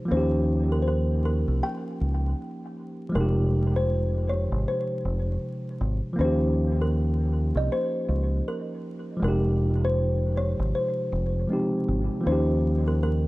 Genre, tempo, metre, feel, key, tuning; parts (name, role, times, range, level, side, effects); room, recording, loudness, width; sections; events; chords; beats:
lo-fi hip hop; 79 BPM; 4/4; swing 60% on 16ths; F minor; A4 = 437 Hz
tine electric piano; accompaniment; 0.0-13.3 s; C3 to G4; -27 LUFS; equal; low-pass filter, dub echo
kalimba; melody; 0.1-13.3 s; Bb4 to G5; -31 LUFS; left 1 dB; low-pass filter, dub echo
deep dub fingered electric bass; bass; 0.1-13.3 s; F1 to Eb2; -25 LUFS; equal
light reverb, studio reverb; echo-heavy mix, vinyl crackle; -23 LUFS; side -20 dB against mid
0.0-13.3 A section
0.1 Eb9; 3.1 Fm9; 6.2 Eb9; 9.2 Fm9; 12.3 Eb9
| 0.10 0.86 1.62 2.38 | 3.14 3.90 4.66 5.42 | 6.18 6.94 7.70 8.46 | 9.22 9.98 10.74 11.50 | 12.26 13.02